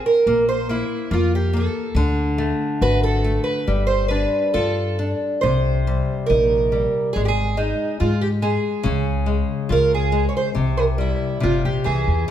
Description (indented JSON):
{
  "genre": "fado-style ballad",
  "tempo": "70 BPM",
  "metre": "2/4",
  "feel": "rubato",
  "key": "unclear",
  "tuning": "A4 = 439 Hz",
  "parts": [
    { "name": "fingerpicked twelve-string acoustic guitar", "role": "melody", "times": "0.0-12.3 s", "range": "Eb4 to Db5", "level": "-22 LUFS", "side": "right 3 dB", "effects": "none" },
    { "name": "nylon-string guitar", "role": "accompaniment", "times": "0.0-12.3 s", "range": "C3 to F#4", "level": "-23 LUFS", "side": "left 4 dB", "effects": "none" },
    { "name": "upright bass", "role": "bass", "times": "0.3-12.3 s", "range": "G1 to Ab2", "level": "-22 LUFS", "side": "equal", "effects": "none" }
  ],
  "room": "moderate recital hall reverb, RT60 1.7 s",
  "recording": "none",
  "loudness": "-18 LUFS",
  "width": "side -10 dB against mid",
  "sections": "0.0-12.3 A section",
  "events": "none",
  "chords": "0.3 Bb5; 2.0 D; 3.7 G5; 5.4 Cm; 7.2 Fm7/Ab (rootless); 8.9 Db; 10.6 C"
}